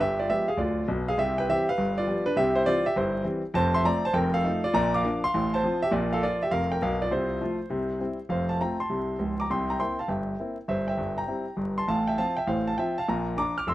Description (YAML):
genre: jazz, stride piano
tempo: 202 BPM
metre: 4/4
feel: swing 65% on 8ths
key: C major, F major from 3.5 s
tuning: A4 = 440 Hz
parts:
  - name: clear concert grand piano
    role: solo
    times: 0.0-13.7 s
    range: Db1 to F6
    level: -24 LUFS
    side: equal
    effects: none
room: light reverb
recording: dark, warm production, vinyl crackle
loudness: -24 LUFS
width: side -15 dB against mid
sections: 0.0-8.3 A section; 8.3-13.7 B section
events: none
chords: 0.0 G7b9; 1.2 C; 1.8 G7; 2.4 C; 3.5 F; 4.1 F7; 4.7 Bb; 5.3 F/A; 5.9 Bb5; 7.1 F/C; 7.7 C; 8.3 F; 9.5 C7; 10.7 C7/G; 11.9 F/A; 13.1 Bb